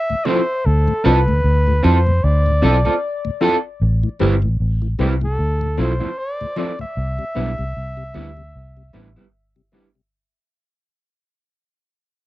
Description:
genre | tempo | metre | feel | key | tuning
reggae | 76 BPM | 4/4 | swing 57% on 16ths | D dorian | A4 = 440 Hz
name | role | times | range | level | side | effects
warm flugelhorn | melody | 0.0-9.3 s | G4 to E5 | -23 LUFS | left 1 dB | tape echo
mellow tonewheel organ | accompaniment | 0.1-10.0 s | D2 to E4 | -24 LUFS | left 4 dB | slow rotary speaker
tine electric piano | accompaniment | 0.3-9.9 s | B3 to B4 | -23 LUFS | left 1 dB | medium stereo tremolo
electric guitar at the edge of break-up | stabs | 0.3-9.9 s | F3 to A4 | -20 LUFS | right 4 dB | none
vintage muted fingered electric bass | bass | 0.7-9.2 s | G1 to F2 | -17 LUFS | equal | none
room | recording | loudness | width
little or no reverb | dry, close 1970s-style studio recording | -16 LUFS | side -16 dB against mid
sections
0.0-3.8 A section; 3.8-10.1 B section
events
fade-out 3.8-10.1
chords
0.0 Dm9; 3.8 Am7; 5.4 Dm9; 7.0 Cmaj7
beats
| 0.65 1.44 2.23 3.02 | 3.81 4.59 5.38 6.17 | 6.96 7.75 8.54 9.33

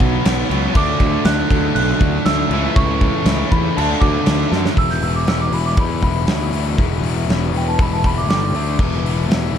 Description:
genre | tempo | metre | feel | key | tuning
hard rock | 120 BPM | 4/4 | straight | unclear | A4 = 441 Hz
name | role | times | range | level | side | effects
large celesta | melody | 0.0-9.3 s | G5 to G6 | -24 LUFS | right 2 dB | none
biting overdriven guitar | riff | 0.0-9.6 s | E2 to D4 | -24 LUFS | left 14 dB | none
distorted electric guitar | riff | 0.0-4.8 s | A2 to D4 | -23 LUFS | right 14 dB | overdrive
overdriven semi-hollow guitar | riff | 0.0-4.8 s | B2 to F#4 | -24 LUFS | right 2 dB | none
fuzz picked electric bass | bass | 0.0-9.6 s | E1 to F#2 | -20 LUFS | equal | overdrive
big rock drum kit | drums | 0.0-9.6 s | crash cymbal, hi-hat, kick drum, snare drum | -19 LUFS | equal | none
room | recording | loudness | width
studio ambience | none | -15 LUFS | side -8 dB against mid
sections
0.0-4.8 A section; 4.8-9.6 B section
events
drum fill 4.5; celesta solo 4.8-9.6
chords
0.0 Bm; 0.8 D; 2.5 A/C#; 3.8 D; 4.8 E5; 8.3 G5; 8.5 D5; 8.8 E5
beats
0.26 | 0.76 1.26 1.76 2.26 | 2.77 3.27 3.77 4.27 | 4.77 5.27 5.78 6.28 | 6.78 7.28 7.79 8.29 | 8.79 9.29

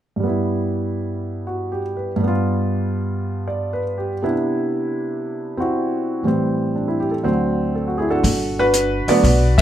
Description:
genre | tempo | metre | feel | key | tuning
jazz piano trio | 120 BPM | 4/4 | swing 69% on 8ths | G major | A4 = 440 Hz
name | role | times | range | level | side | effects
warm concert grand piano | melody | 0.2-9.6 s | D2 to E5 | -19 LUFS | right 1 dB | none
upright bass | bass | 8.2-9.6 s | G1 to B1 | -19 LUFS | left 1 dB | none
open jazz drum kit | drums | 8.2-9.6 s | hi-hat, kick drum, ride cymbal | -20 LUFS | left 2 dB | none
room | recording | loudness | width
moderate club reverb, RT60 0.6 s | none | -18 LUFS | side -11 dB against mid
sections
0.2-8.2 A section; 8.2-9.6 B section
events
none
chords
0.2 G6; 2.2 G7; 4.2 Cmaj9; 6.2 Am7; 7.2 D7; 8.2 Gmaj9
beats
| 0.20 0.71 1.21 1.71 | 2.21 2.72 3.22 3.72 | 4.22 4.72 5.23 5.73 | 6.23 6.73 7.23 7.74 | 8.24 8.74 9.24

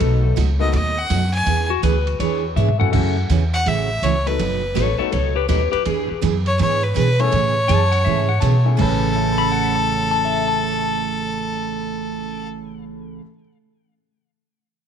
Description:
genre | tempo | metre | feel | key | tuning
country, western swing | 164 BPM | 4/4 | swing 64% on 8ths | A major | A4 = 440 Hz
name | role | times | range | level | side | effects
clean lap steel guitar | second line | 0.0-12.5 s | F#4 to B5 | -24 LUFS | left 11 dB | tape echo
bright upright piano | accompaniment | 0.0-13.5 s | A2 to E7 | -28 LUFS | left 11 dB | none
picked steel-string acoustic guitar | accompaniment | 0.0-13.2 s | A2 to G#4 | -24 LUFS | right 12 dB | none
upright bass | bass | 0.0-13.2 s | F#1 to B2 | -20 LUFS | equal | none
trip hop sampler-style drum kit | drums | 0.0-8.9 s | crash cymbal, hi-hat, kick drum, ride cymbal, toms | -30 LUFS | right 4 dB | none
clear fiddle | melody | 0.6-12.5 s | A4 to G#5 | -22 LUFS | left 1 dB | none
room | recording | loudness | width
light reverb, small room ambience | 1960s-style stereo with parts hard left and right | -16 LUFS | side -8 dB against mid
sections
0.0-8.8 A section; 8.8-11.7 B section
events
drum fill 2.6-2.9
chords
0.0 B7; 1.5 E7; 2.9 F#m7; 4.4 B7/F#; 5.9 E7; 7.3 Amaj7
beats
| 0.00 0.37 0.73 1.10 | 1.46 1.83 2.19 2.56 | 2.93 3.29 3.66 4.03 | 4.39 4.76 5.12 5.49 | 5.86 6.22 6.59 6.96 | 7.32 7.69 8.05 8.42 | 8.79 9.15 9.52 9.88 | 10.25 10.62 10.98 11.35

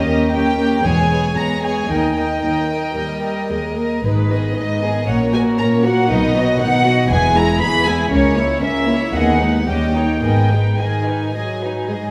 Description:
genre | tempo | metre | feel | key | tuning
quick classical-period movement for string orchestra | 107-121 BPM | 4/4 | rubato | G# minor | A4 = 441 Hz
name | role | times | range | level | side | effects
warm symphonic violin section | melody | 0.0-11.9 s | B4 to B5 | -23 LUFS | equal | none
warm chamber violin section | second line | 0.0-12.1 s | C#4 to D#5 | -25 LUFS | equal | none
warm chamber viola section | accompaniment | 0.0-12.1 s | D#3 to D#4 | -23 LUFS | equal | none
dark chamber cello section | bass | 0.0-12.1 s | C#2 to B2 | -23 LUFS | equal | none
warm symphonic double bass section | bass | 0.0-10.7 s | E1 to D#2 | -25 LUFS | equal | none
room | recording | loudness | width
wet scoring stage reverb, RT60 1.6 s | heard from further back in the room | -17 LUFS | mono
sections
0.0-12.1 A section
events
none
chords
0.0 D#7; 0.9 E6; 1.9 D#; 4.0 G#m; 5.1 F#/A#; 6.1 B; 7.1 E; 8.1 A#dim/C#; 9.1 G#m/D#; 9.7 D#7; 10.2 G#m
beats
0.34 0.85 1.37 | 1.90 2.43 2.97 3.50 | 4.04 4.57 5.08 5.59 | 6.10 6.61 7.11 7.61 | 8.11 8.62 9.14 9.68 | 10.23 10.79 11.34 11.89

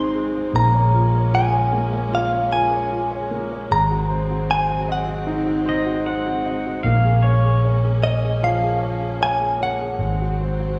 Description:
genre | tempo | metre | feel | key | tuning
acoustic folk-pop ballad | 76 BPM | 4/4 | straight | unclear | A4 = 440 Hz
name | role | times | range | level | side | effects
direct-recorded clean electric guitar | melody | 0.0-10.8 s | Eb5 to C6 | -24 LUFS | equal | tremolo
warm concert grand piano | accompaniment | 0.0-10.8 s | F3 to Eb5 | -28 LUFS | equal | none
bright symphonic string section | sustained chords | 0.0-10.8 s | Gb3 to Db4 | -33 LUFS | equal | none
fingered electric bass | bass | 0.0-10.8 s | Ab1 to Bb1 | -24 LUFS | equal | none
pedal steel guitar | second line | 5.7-7.8 s | Db5 to Gb5 | -28 LUFS | equal | none
room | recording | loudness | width
wet recital hall reverb, RT60 1.7 s | recorded in a church or concert hall, studio ambience | -20 LUFS | mono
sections
0.0-10.8 A section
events
none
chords
0.0 Ab7; 0.5 Bbm7; 3.7 Ab7; 6.9 Bbm7; 10.0 Ab7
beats
| 0.53 1.33 2.12 2.92 | 3.71 4.50 5.28 6.07 | 6.85 7.64 8.43 9.21 | 10.00

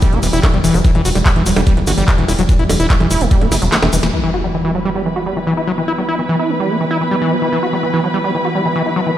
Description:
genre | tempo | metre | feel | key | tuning
psychedelic trance | 146 BPM | 4/4 | straight | E minor | A4 = 437 Hz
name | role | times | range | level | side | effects
swarming drone | sustained chords | 0.0-9.2 s | E3 to B3 | -22 LUFS | equal | built-in reverb, sidechain pumping
overdriven acid bass | riff | 0.0-9.1 s | E3 to F#4 | -18 LUFS | moving between left 4 dB and right 4 dB | auto-pan, sidechain pumping, tape echo
drum and bass drum kit | drums | 0.0-4.1 s | bongos, handclaps, hi-hat, ride cymbal, snare drum | -20 LUFS | right 1 dB | none
electronic kick drum | drums | 0.0-3.4 s | none | -13 LUFS | equal | none
egg shaker | percussion | 0.0-4.1 s | none | -27 LUFS | left 2 dB | none
tight sequencer bass | bass | 0.1-4.1 s | D1 to G1 | -17 LUFS | equal | none
impact | sound effects | 4.1-5.8 s | none | -26 LUFS | equal | none
muted chamber string section | texture | 4.1-9.2 s | E4 to B5 | -22 LUFS | right 1 dB | sidechain pumping
room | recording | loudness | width
moderate lush hall reverb, RT60 2.1 s | played on a big sound system in a bare room, stone room reverb | -13 LUFS | side -12 dB against mid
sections
0.0-4.1 A section; 4.1-9.2 B section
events
drop 0.0-4.1; drum fill 3.5-4.1; kick drops out 3.7-4.1; band accent 4.0; impact 4.1-5.8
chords
0.0 E5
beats
0.02 0.43 | 0.85 1.26 1.67 2.08 | 2.49 2.90 3.31 3.72 | 4.13 4.54 4.96 5.37 | 5.78 6.19 6.60 7.01 | 7.42 7.83 8.24 8.65 | 9.06

